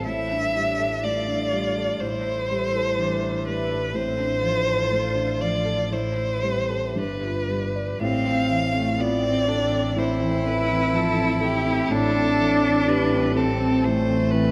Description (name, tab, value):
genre	neoclassical piano and strings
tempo	62 BPM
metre	4/4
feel	rubato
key	unclear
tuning	A4 = 440 Hz
part	warm violin	melody	0.0-14.5 s	G4 to F5	-28 LUFS	equal	none
part	rich cello	second line	0.0-14.5 s	A3 to F4	-29 LUFS	equal	none
part	felt-muted upright piano	accompaniment	0.0-14.5 s	G2 to D5	-29 LUFS	equal	none
part	warbly tape-like pad	sustained chords	0.0-14.5 s	E3 to E5	-38 LUFS	equal	none
part	rich double bass	bass	0.0-14.5 s	G1 to A1	-32 LUFS	equal	none
room	wet concert hall reverb, RT60 2.2 s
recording	recorded in a church or concert hall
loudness	-23 LUFS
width	mono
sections	0.0-8.0 A section; 8.0-14.5 B section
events	none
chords	0.1 Gsus2/A; 2.0 Am7; 4.0 Dm7/A; 5.9 Am7; 7.0 G7; 8.0 Fmaj7/A; 11.9 Am7